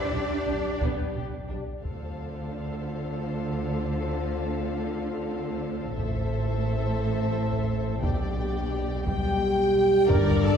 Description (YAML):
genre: cinematic, epic orchestral film score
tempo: 58 BPM (dotted quarters)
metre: 6/8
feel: straight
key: D dorian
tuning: A4 = 440 Hz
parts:
  - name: rich symphonic violin section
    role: melody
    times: 0.0-10.6 s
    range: B3 to G5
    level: -39 LUFS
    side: left 6 dB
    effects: none
  - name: rich studio violin section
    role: second line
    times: 0.0-10.6 s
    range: C5 to G5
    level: -37 LUFS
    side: left 4 dB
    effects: none
  - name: rich symphonic viola section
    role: accompaniment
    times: 0.0-10.6 s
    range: G4 to Bb4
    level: -36 LUFS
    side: equal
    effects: none
  - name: warm symphonic cello section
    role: bass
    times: 0.0-10.6 s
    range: G2 to D4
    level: -34 LUFS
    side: right 2 dB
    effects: none
  - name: warm symphonic double bass section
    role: bass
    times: 0.1-10.6 s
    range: G1 to D2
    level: -30 LUFS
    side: right 2 dB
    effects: none
  - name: dark French horn section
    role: sustained chords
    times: 0.5-10.6 s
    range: C4 to D5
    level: -29 LUFS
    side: equal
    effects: none
  - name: taiko ensemble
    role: drums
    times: 0.8-10.6 s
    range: none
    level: -32 LUFS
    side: equal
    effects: none
  - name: reverse cymbal and sub drop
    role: sound effects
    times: 10.0-10.6 s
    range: none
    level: -38 LUFS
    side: left 1 dB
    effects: none
  - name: dark trombone section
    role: sustained chords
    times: 9.1-10.6 s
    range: D3 to G3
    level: -30 LUFS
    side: left 1 dB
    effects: none
  - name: timpani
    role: percussion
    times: 10.1-10.6 s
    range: G2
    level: -28 LUFS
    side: left 3 dB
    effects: none
room: wet concert hall reverb, RT60 2.6 s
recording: heard from further back in the room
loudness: -25 LUFS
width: side -7 dB against mid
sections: 0.0-1.8 A section; 1.8-10.1 B section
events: impact 10.1-10.6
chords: 0.0 G/B; 1.8 Dm7; 6.0 Am; 8.0 G/B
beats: 0.81 | 1.84 2.87 | 3.91 4.94 | 5.97 7.00 | 8.04 9.07 | 10.10